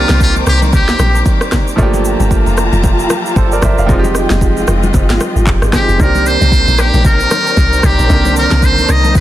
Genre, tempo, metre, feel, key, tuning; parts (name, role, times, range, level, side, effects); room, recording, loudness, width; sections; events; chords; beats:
amapiano; 114 BPM; 4/4; swing 58% on 16ths; C minor; A4 = 440 Hz
trumpet with metal mute; melody; 0.0-1.2, 5.7-9.2 s; F4 to Eb5; -14 LUFS; left 1 dB; ping-pong delay
bright baby grand piano; accompaniment; 0.0-9.2 s; D3 to F5; -18 LUFS; right 3 dB
warm studio string section; sustained chords; 0.0-9.2 s; Eb3 to D6; -20 LUFS; left 2 dB; sidechain pumping
deep log drum bass; bass; 0.0-9.2 s; F1 to C2; -13 LUFS; equal
afro-pop drum kit; drums; 0.1-9.2 s; handclaps, kick drum, rim click, shaker, snare drum; -15 LUFS; equal; soft clipping on snare
congas; percussion; 0.1-9.2 s; -22 LUFS; left 3 dB
small room ambience; dense, heavily limited modern master; -9 LUFS; side -13 dB against mid
0.0-9.2 A section
0.0 Cm9; 1.8 Gm9; 3.9 Fm9; 6.0 Cm9
0.20 0.73 1.26 | 1.78 2.31 2.84 3.36 | 3.89 4.42 4.94 5.47 | 6.00 6.52 7.05 7.57 | 8.10 8.63 9.15